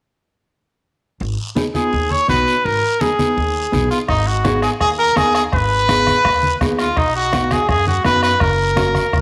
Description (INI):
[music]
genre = latin, cumbia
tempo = 166 BPM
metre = 4/4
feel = straight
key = G# dorian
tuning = A4 = 441 Hz
[part]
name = upright bass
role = bass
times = 1.2-9.2 s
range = F#1 to F#2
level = -25 LUFS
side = equal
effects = none
[part]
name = congas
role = percussion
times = 1.2-9.2 s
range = none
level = -27 LUFS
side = equal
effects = none
[part]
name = guiro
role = percussion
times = 1.2-9.2 s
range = none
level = -34 LUFS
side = equal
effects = none
[part]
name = mellow electric guitar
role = accompaniment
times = 1.6-9.0 s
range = A#3 to A#4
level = -24 LUFS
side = equal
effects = none
[part]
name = brilliant trumpet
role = melody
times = 1.8-9.2 s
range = D#4 to C#5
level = -19 LUFS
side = equal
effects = slapback echo
[part]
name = bombo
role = percussion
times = 4.1-9.2 s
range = none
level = -25 LUFS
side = equal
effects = none
[sound]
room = moderate echo chamber reverb, RT60 1.3 s, studio reverb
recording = none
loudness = -17 LUFS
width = mono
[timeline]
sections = 1.2-4.1 A section; 4.1-9.2 B section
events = none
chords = 1.2 G#m; 7.0 B; 8.4 F#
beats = | 1.21 1.57 1.93 2.29 | 2.65 3.01 3.37 3.73 | 4.09 4.45 4.81 5.17 | 5.53 5.89 6.25 6.61 | 6.97 7.33 7.69 8.05 | 8.41 8.77 9.13